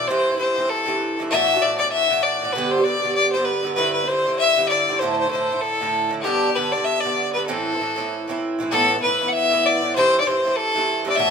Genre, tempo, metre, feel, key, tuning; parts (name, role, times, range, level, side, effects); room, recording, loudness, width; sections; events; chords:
celtic folk, Celtic reel; 195 BPM; 4/4; swing 56% on 8ths; A4 = 440 Hz
rich fiddle; melody; 0.0-11.3 s; G4 to F#5; -19 LUFS; left 2 dB
Irish bouzouki; accompaniment; 0.0-11.3 s; G2 to G4; -24 LUFS; right 4 dB
wet studio reverb, RT60 0.8 s; band playing live in one room; -18 LUFS; side -6 dB against mid
0.0-8.7 A section; 8.7-11.3 A section
0.1 C; 1.3 Dadd9; 2.5 G; 3.8 Cadd9; 5.0 Dsus2; 6.3 G; 7.5 Am; 8.7 Asus2; 9.9 C